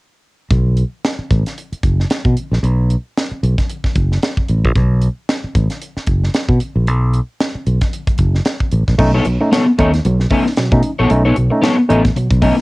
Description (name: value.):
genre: funk.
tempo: 113 BPM.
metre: 4/4.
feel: swing 56% on 16ths.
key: B mixolydian.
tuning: A4 = 440 Hz.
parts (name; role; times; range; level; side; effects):
fingered electric bass; bass; 0.5-12.5 s; F#1 to B2; -14 LUFS; equal; none.
crisp fusion drum kit; drums; 0.5-12.6 s; crash cymbal, hi-hat, kick drum, snare drum; -18 LUFS; equal; cassette tape.
electric guitar at the edge of break-up; accompaniment; 9.0-12.6 s; B3 to D#5; -15 LUFS; left 2 dB; analog chorus, cassette tape.
barky tine electric piano; stabs; 9.0-12.6 s; B2 to D#4; -17 LUFS; right 1 dB; overdrive, cassette tape.
room: light reverb.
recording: home recording on cassette.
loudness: -13 LUFS.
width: side -22 dB against mid.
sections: 0.5-9.0 A section; 9.0-12.6 B section.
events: none.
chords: 0.5 B5; 9.0 B9.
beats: | 0.51 1.04 1.57 2.10 | 2.63 3.17 3.70 4.23 | 4.76 5.29 5.82 6.35 | 6.88 7.41 7.93 8.46 | 8.99 9.52 10.05 10.57 | 11.10 11.63 12.16.